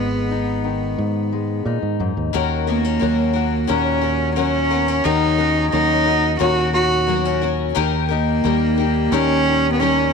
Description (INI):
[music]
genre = indie folk with a building arrangement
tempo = 88 BPM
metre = 4/4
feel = straight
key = unclear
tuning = A4 = 439 Hz
[part]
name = warm cello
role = melody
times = 0.0-10.1 s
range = A#3 to F#4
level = -19 LUFS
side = right 2 dB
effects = none
[part]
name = fingerpicked steel-string acoustic guitar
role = accompaniment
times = 0.0-10.1 s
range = G#2 to A#4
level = -24 LUFS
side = left 11 dB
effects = none
[part]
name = fingered electric bass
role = bass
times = 0.0-10.1 s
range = G#1 to A#2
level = -23 LUFS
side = right 2 dB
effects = none
[part]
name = picked twelve-string acoustic guitar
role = accompaniment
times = 2.3-10.1 s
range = D#3 to A#4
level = -23 LUFS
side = left 11 dB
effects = none
[sound]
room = light reverb, studio ambience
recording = 1960s-style stereo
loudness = -16 LUFS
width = side -5 dB against mid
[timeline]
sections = 0.0-2.3 A section; 2.3-10.1 B section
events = none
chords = 0.0 G#m; 2.3 D#m7; 7.8 D#